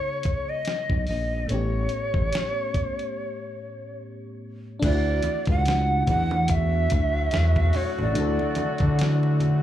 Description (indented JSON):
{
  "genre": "R&B, neo-soul",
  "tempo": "72 BPM",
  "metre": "4/4",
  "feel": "swing 58% on 16ths",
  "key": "D major from 4.8 s",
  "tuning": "A4 = 439 Hz",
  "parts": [
    { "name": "breathy shakuhachi", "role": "melody", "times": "0.0-9.2 s", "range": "C#5 to F#5", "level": "-28 LUFS", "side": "right 1 dB", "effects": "slapback echo, tape echo" },
    { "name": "FM electric piano", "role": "accompaniment", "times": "0.0-9.6 s", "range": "A2 to A4", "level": "-32 LUFS", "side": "left 2 dB", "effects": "chorus, slapback echo" },
    { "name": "dusty soul sampler-style drum kit", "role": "drums", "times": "0.2-9.6 s", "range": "crash cymbal, hi-hat, kick drum, snare drum", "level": "-27 LUFS", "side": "equal", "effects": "none" },
    { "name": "smooth synth bass", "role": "bass", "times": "0.9-9.6 s", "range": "A1 to D3", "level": "-23 LUFS", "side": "equal", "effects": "none" },
    { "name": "congas", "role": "percussion", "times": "4.8-9.6 s", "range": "none", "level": "-33 LUFS", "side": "right 1 dB", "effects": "slapback echo" },
    { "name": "warm horn section", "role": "stabs", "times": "6.5-9.6 s", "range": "D3 to F#4", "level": "-32 LUFS", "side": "left 4 dB", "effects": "slapback echo" }
  ],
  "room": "small room ambience",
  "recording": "live gig heard through the venue's PA, club reverb",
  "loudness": "-21 LUFS",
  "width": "side -12 dB against mid",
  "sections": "0.0-4.8 A section; 4.8-9.6 B section",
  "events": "break 3.2-4.8",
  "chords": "0.0 C#7sus2; 1.5 A7; 4.8 Dadd9"
}